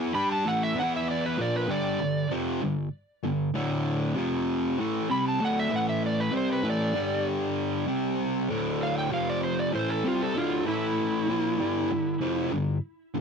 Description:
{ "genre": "rock", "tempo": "97 BPM", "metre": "4/4", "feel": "straight", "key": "unclear", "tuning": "A4 = 439 Hz", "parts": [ { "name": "fuzz guitar", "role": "riff", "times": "0.0-13.2 s", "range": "D2 to G4", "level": "-26 LUFS", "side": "equal", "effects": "distortion" }, { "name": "overdriven slide guitar", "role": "melody", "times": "0.1-12.5 s", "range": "E4 to B5", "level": "-29 LUFS", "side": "right 2 dB", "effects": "none" } ], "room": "moderate booth ambience, RT60 0.2 s", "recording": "dry, close 1970s-style studio recording", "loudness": "-25 LUFS", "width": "side -6 dB against mid", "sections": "0.0-8.5 A section; 8.5-13.2 B section", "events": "electric slide guitar solo 8.5-13.2", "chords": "0.0 A5; 0.8 E5; 1.4 G5; 3.6 D5; 4.2 F5; 4.8 D5; 5.7 A5; 7.0 G5; 7.9 C5; 8.5 D5; 9.1 F5; 9.7 D5; 10.7 A5; 11.3 G5" }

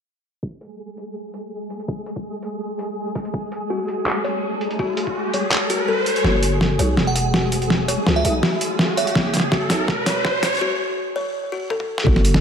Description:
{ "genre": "half-time drum and bass", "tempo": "165 BPM", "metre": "4/4", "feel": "swing 54% on 16ths, half-time", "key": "unclear", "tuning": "A4 = 445 Hz", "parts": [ { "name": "electronic kick drum", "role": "drums", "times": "0.4-5.1, 9.2-12.1 s", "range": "none", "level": "-22 LUFS", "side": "equal", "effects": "overdrive, high-pass filter on kick, studio reverb" }, { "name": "flickering grainy texture", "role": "texture", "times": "0.7-10.6 s", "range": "G#3 to G#4", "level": "-28 LUFS", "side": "equal", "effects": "built-in reverb" }, { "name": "boom bap sampler-style drum kit", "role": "drums", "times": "0.6-12.4 s", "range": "handclaps, hi-hat, snare drum, toms", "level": "-21 LUFS", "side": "equal", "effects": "overdrive, studio reverb" }, { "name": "riser", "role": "sound effects", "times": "4.3-10.6 s", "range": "none", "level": "-26 LUFS", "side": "equal", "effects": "none" }, { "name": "buzzing kalimba", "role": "arpeggios", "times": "3.7-12.2 s", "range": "F#4 to C#5", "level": "-25 LUFS", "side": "left 2 dB", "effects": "dub echo" }, { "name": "growling 808-style bass", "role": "bass", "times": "6.2-12.4 s", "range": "E1 to C#2", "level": "-22 LUFS", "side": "equal", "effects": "tube saturation" }, { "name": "glassy synth bell", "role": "melody", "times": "7.1-9.3 s", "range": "E5 to F#5", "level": "-27 LUFS", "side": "right 4 dB", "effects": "chorus, tape echo" } ], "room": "moderate lush hall reverb, RT60 2.2 s", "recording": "high-pass filter, low-pass filter", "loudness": "-18 LUFS", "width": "side -7 dB against mid", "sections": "0.4-6.2 A section; 6.2-12.1 B section", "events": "filter sweep 0.4-6.2, 6.2-12.1; riser 4.3-6.2, 6.2-10.6; kick drops out 5.9-6.2; build-up 6.2-12.1; drum fill 6.2-10.6, 11.7-12.1; break 10.6-12.1", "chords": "0.4 F#sus2 (rootless); 6.2 F#sus2" }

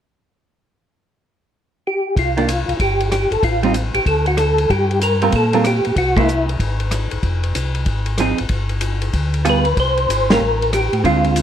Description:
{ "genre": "soul jazz organ trio", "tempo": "189 BPM", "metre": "4/4", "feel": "swing 64% on 8ths", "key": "unclear", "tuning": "A4 = 437 Hz", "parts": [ { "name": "percussive tonewheel organ", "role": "melody", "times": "1.9-6.5, 9.5-11.4 s", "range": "E4 to C5", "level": "-18 LUFS", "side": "equal", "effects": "slow rotary speaker, overdrive, chorus vibrato" }, { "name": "mellow tonewheel organ", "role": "bass", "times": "2.2-11.4 s", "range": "F1 to Bb2", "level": "-20 LUFS", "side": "equal", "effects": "chorus vibrato, slow rotary speaker" }, { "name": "warm soul drum kit", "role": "drums", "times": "2.2-11.4 s", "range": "hi-hat, kick drum, ride cymbal, rim click, snare drum", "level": "-23 LUFS", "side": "left 1 dB", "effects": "none" }, { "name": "vintage hollow-body jazz guitar", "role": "accompaniment", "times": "2.4-11.4 s", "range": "D3 to Bb4", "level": "-20 LUFS", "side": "right 5 dB", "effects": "none" } ], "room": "light reverb", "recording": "none", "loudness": "-15 LUFS", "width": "side -9 dB against mid", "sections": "0.9-2.2 A section; 2.2-11.4 B section", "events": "band accent 6.1, 10.3", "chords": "0.9 N.C.; 2.2 C5; 3.4 Am7b5; 4.1 D5; 4.7 Gm11; 6.0 Caug; 7.2 Fm7; 8.5 G7b9; 9.8 C5; 10.4 Gmadd9/A" }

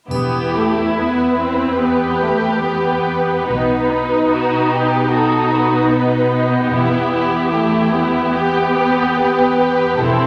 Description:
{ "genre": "classical, slow romantic movement for symphony orchestra", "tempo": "73 BPM", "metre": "4/4", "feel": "uneven beats, rubato", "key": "E minor", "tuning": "A4 = 444 Hz", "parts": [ { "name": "warm symphonic violin section", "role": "melody", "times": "0.1-10.3 s", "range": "G4 to B4", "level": "-23 LUFS", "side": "equal", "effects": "none" }, { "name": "rich symphonic violin section", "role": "second line", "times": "0.1-10.3 s", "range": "D#4 to G4", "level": "-22 LUFS", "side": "equal", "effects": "none" }, { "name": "rich symphonic viola section", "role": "accompaniment", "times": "0.1-10.3 s", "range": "A3 to D#4", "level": "-20 LUFS", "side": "equal", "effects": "none" }, { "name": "rich symphonic cello section", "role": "bass", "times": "0.1-10.3 s", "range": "E2 to B2", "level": "-26 LUFS", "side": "equal", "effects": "none" }, { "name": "warm studio double bass section", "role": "bass", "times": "0.1-10.3 s", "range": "E1 to B1", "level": "-26 LUFS", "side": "equal", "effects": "none" }, { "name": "triangle", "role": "percussion", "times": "0.1-1.8 s", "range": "none", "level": "-41 LUFS", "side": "equal", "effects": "none" } ], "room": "wet scoring stage reverb, RT60 1.7 s", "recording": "none", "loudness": "-16 LUFS", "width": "mono", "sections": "0.1-10.3 A section", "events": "none", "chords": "0.1 Em; 3.5 B; 6.7 Em" }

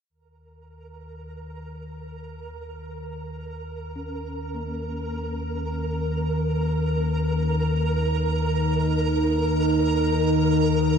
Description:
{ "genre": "dark ambient drone", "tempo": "free time", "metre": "none", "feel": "none", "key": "unclear", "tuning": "A4 = 440 Hz", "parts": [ { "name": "deep rumbling drone", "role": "drone", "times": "0.9-11.0 s", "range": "Eb2 to Eb3", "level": "-25 LUFS", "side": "left 1 dB", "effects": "built-in reverb" }, { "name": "flickering grainy texture", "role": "texture", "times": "0.9-11.0 s", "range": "Bb4", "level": "-29 LUFS", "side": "right 2 dB", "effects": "built-in reverb, shimmer reverb" }, { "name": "gamelan-type bronze metallophone", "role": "arpeggios", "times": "4.0-11.0 s", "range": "Bb3 to Db4", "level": "-39 LUFS", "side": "left 2 dB", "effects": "diffuse ambient delay, shimmer reverb" }, { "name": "dark analog pad", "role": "sustained chords", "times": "8.7-11.0 s", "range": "Eb4 to Bb4", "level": "-25 LUFS", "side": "right 3 dB", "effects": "chorus, shimmer reverb" } ], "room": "wet huge ambient reverb, RT60 7.2 s", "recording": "none", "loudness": "-22 LUFS", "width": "side -7 dB against mid", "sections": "0.1-11.0 A section", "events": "fade-in on synth drone 0.1-11.0; fade-in on synth texture 0.1-11.0; fade-in on bronze metallophone 0.1-11.0", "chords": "0.1 Eb5" }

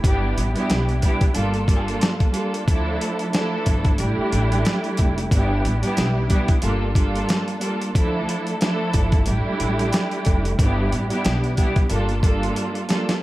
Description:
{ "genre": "hip hop, boom-bap hip-hop", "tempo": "91 BPM", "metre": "4/4", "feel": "swing 56% on 16ths", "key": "unclear", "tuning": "A4 = 440 Hz", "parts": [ { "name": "warm studio string section", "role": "accompaniment", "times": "0.0-13.2 s", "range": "F3 to A4", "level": "-23 LUFS", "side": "right 1 dB", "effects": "cassette tape, high-pass filter, low-pass filter" }, { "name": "upright bass", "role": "bass", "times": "0.0-12.5 s", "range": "F1 to D2", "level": "-24 LUFS", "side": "equal", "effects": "none" }, { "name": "dusty soul sampler-style drum kit", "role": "drums", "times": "0.0-13.2 s", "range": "hi-hat, kick drum, snare drum", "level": "-21 LUFS", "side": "equal", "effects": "overdrive" } ], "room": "light reverb", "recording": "vinyl crackle", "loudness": "-18 LUFS", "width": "side -17 dB against mid", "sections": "0.0-13.2 A section", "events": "drum fill 12.6-13.2", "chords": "0.0 Em7/G; 1.4 Gm7; 2.7 Dmadd9; 4.0 A7sus4; 5.3 Em7/G; 6.6 Gm7; 7.9 Dmadd9; 9.3 A7sus4; 10.6 Em7/G; 11.9 Gm7" }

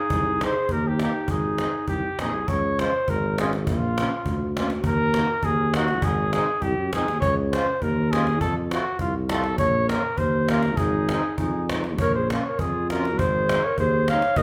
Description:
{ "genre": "alpine folk, alpine dance band", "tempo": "101 BPM", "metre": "2/4", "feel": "rubato", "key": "Db major", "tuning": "A4 = 438 Hz", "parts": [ { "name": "clear flugelhorn", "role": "melody", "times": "0.0-14.4 s", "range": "F4 to F5", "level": "-27 LUFS", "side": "equal", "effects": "none" }, { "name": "warm clarinet", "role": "second line", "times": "0.0-2.2, 10.8-14.4 s", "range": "Eb4 to Db5", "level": "-32 LUFS", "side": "equal", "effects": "none" }, { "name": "mellow tuba", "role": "bass", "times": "0.1-14.4 s", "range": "Ab1 to Gb2", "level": "-28 LUFS", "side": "equal", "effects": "none" }, { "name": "cajon", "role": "drums", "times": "0.1-14.4 s", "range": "none", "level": "-31 LUFS", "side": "equal", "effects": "none" }, { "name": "accordion", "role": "accompaniment", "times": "0.4-14.2 s", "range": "Ab3 to Ab4", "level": "-35 LUFS", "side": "equal", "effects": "light tremolo tuning" } ], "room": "moderate large studio reverb, RT60 1.3 s", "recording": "band playing live in one room", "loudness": "-24 LUFS", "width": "mono", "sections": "0.0-2.5 A section; 2.5-14.4 B section", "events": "none", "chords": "0.1 Cm; 0.7 Eb; 1.3 Ab; 2.5 Db; 3.7 Bbm; 4.8 Ebm; 6.0 Ab; 7.2 Db; 8.4 F; 9.6 Bbm; 10.8 Ab; 12.0 Bbm; 13.2 Ab" }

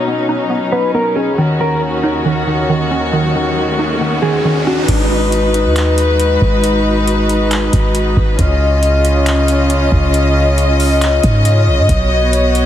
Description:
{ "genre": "hip hop, atmospheric cloud-rap", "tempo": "137 BPM", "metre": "4/4", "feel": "half-time", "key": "G# dorian", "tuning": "A4 = 440 Hz", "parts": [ { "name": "warm chamber string section", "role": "sustained chords", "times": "0.0-12.7 s", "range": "D#2 to D#5", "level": "-14 LUFS", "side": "left 1 dB", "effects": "sidechain pumping, low-pass filter" }, { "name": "hollow square pluck", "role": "arpeggios", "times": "0.0-4.9 s", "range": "D#3 to D#4", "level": "-18 LUFS", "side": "right 2 dB", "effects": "chorus, low-pass filter, ping-pong delay" }, { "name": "mellow electric guitar", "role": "melody", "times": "0.7-4.9 s", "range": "F#4 to B4", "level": "-20 LUFS", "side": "left 1 dB", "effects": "analog chorus, low-pass filter, ping-pong delay" }, { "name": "riser", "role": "sound effects", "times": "2.6-4.9 s", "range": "none", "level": "-23 LUFS", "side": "equal", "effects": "none" }, { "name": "warm 808-style bass", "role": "bass", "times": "4.9-12.7 s", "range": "G#1 to G#2", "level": "-14 LUFS", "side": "equal", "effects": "none" }, { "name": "booming analog drum machine", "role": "drums", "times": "4.9-12.7 s", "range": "crash cymbal, handclaps, hi-hat, kick drum", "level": "-19 LUFS", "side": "equal", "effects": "none" } ], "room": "light reverb, digital ambience", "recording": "heavily compressed radio sound", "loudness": "-11 LUFS", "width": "side -11 dB against mid", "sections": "0.0-4.9 A section; 4.9-12.7 B section", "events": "riser 2.6-4.9", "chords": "0.0 Badd9; 1.4 D#m7; 4.9 G#m7; 8.4 C#add9; 11.9 Badd9" }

